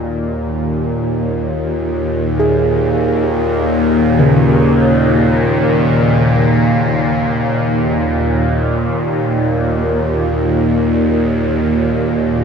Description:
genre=dark ambient drone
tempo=free time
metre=none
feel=none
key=unclear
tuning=A4 = 440 Hz
part: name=gamelan-type bossed gongs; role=arpeggios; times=0.0-11.4 s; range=Eb2 to Ab4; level=-20 LUFS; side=right 1 dB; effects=tape echo, shimmer reverb
part: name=bowed-like drone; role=drone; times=0.0-12.4 s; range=Eb2 to Bb2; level=-13 LUFS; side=equal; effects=built-in reverb, phaser
room=wet huge ambient reverb, RT60 8.5 s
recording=none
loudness=-12 LUFS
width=side -6 dB against mid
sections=0.0-12.4 A section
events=none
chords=0.0 Eb5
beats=free time

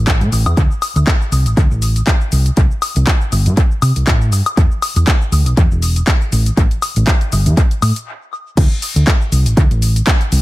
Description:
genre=filtered disco house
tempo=120 BPM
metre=4/4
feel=swing 56% on 16ths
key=unclear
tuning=A4 = 440 Hz
part: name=hollow-body short-scale fingered electric bass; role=bass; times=0.0-10.4 s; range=E1 to C3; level=-13 LUFS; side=equal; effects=sidechain pumping, low-pass filter
part: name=electronic kick drum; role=drums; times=0.1-10.2 s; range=none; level=-13 LUFS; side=equal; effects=overdrive, small room ambience
part: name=house drum kit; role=drums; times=0.1-10.4 s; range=crash cymbal, handclaps, hi-hat, shaker, woodblock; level=-20 LUFS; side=left 2 dB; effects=overdrive, sidechain pumping on hats, small room ambience, sidechain pumping on perc, sidechain pumping on cymbals, dub echo
room=little or no reverb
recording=echo-heavy mix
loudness=-12 LUFS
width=side -18 dB against mid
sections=0.0-8.6 A section; 8.6-10.4 B section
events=filter sweep on fingered electric bass 0.0-8.6; stop 8.1-8.6; drop 8.6-10.4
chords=none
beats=0.07 | 0.57 1.07 1.57 2.07 | 2.57 3.07 3.57 4.07 | 4.57 5.07 5.57 6.07 | 6.57 7.07 7.57 8.07 | 8.57 9.07 9.57 10.07

